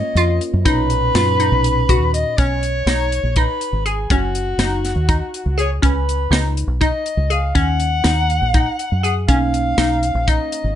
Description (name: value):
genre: progressive instrumental, band music in an uneven meter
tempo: 243 BPM (eighths)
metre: 7/8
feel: straight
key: B lydian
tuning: A4 = 440 Hz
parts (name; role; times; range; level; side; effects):
- mellow soprano saxophone; melody; 0.0-10.8 s; F#4 to F#5; -21 LUFS; left 2 dB; ping-pong delay
- overdriven tine electric piano; accompaniment; 0.0-2.3, 9.3-10.8 s; A#2 to E#4; -24 LUFS; right 5 dB; phaser
- glassy wavetable pluck; arpeggios; 0.0-10.6 s; C#4 to G#4; -22 LUFS; left 2 dB; chorus, phaser
- deep dub fingered electric bass; bass; 0.2-10.8 s; F#1 to F#2; -19 LUFS; equal; none
- tight funk drum kit; drums; 0.2-10.6 s; hi-hat, kick drum, snare drum; -20 LUFS; equal; none
room: light reverb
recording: nothing above 10.6 kHz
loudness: -15 LUFS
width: side -10 dB against mid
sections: 0.0-2.4 A section; 2.4-10.8 B section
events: none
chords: 0.0 A#m; 0.7 Bmaj7; 4.1 F#5; 5.8 C#sus2; 7.6 F#6; 9.3 Bmaj7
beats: 0.16 0.41 | 0.65 0.90 1.15 1.39 1.64 1.88 2.13 | 2.38 2.62 2.87 3.12 3.36 3.61 3.85 | 4.10 4.35 4.59 4.84 5.09 5.33 5.58 | 5.83 6.08 6.32 6.57 6.82 7.06 7.31 | 7.56 7.80 8.05 8.30 8.54 8.79 9.04 | 9.29 9.53 9.78 10.03 10.28 10.52